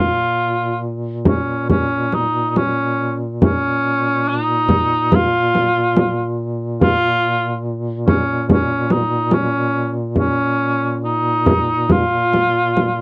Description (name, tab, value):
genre	caucasian folk, Caucasian lament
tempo	70 BPM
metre	4/4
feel	rubato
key	Bb minor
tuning	A4 = 442 Hz
part	dark cor anglais	melody	0.0-13.0 s	Db4 to F4	-20 LUFS	equal	none
part	warm duduk	drone	0.0-13.0 s	Bb2	-25 LUFS	equal	none
part	frame drum	percussion	1.3-13.0 s	none	-18 LUFS	equal	none
room	little or no reverb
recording	dry, close 1970s-style studio recording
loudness	-18 LUFS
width	mono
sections	0.0-13.0 A section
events	none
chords	none